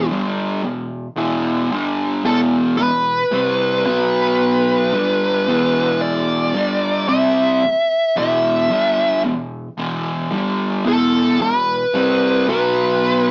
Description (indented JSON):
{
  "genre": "metal",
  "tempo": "56 BPM",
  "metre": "4/4",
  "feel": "straight",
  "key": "E minor",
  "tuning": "A4 = 439 Hz",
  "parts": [
    { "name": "fuzz lead guitar", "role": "melody", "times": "0.0-13.3 s", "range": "A4 to E5", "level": "-17 LUFS", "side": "equal", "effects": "wah, distortion" },
    { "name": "fuzz guitar", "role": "riff", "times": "0.0-13.3 s", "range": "E2 to C4", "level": "-18 LUFS", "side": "equal", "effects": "distortion" }
  ],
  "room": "moderate small room reverb, RT60 0.5 s",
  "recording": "rough rehearsal-room recording, small speaker sound",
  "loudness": "-15 LUFS",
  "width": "side -36 dB against mid",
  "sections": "0.0-13.3 A section",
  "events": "none",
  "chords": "0.0 Em; 3.9 B5; 4.9 Em; 12.5 B5",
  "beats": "0.10 1.17 | 2.25 3.32 4.40 5.47 | 6.55 7.62 8.70 9.78 | 10.86 11.94 13.02"
}